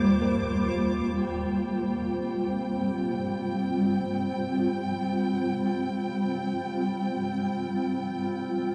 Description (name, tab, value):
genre	ambient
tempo	free time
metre	none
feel	none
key	C minor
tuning	A4 = 440 Hz
part	granular cloud pad	sustained chords	0.0-8.7 s	Eb2 to C5	-28 LUFS	equal	built-in reverb
part	kalimba	arpeggios	0.0-1.7 s	Bb4 to C5	-45 LUFS	equal	none
part	rich chamber violin section	texture	0.0-8.7 s	G5 to D6	-39 LUFS	equal	none
room	wet huge ambient reverb, RT60 9.2 s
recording	dark, warm production, nothing above 10.6 kHz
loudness	-28 LUFS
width	mono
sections	0.0-1.2 A section; 1.2-8.7 B section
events	filter sweep on ambient pad 1.2-8.7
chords	0.0 Eb69; 1.2 C5; 7.3 F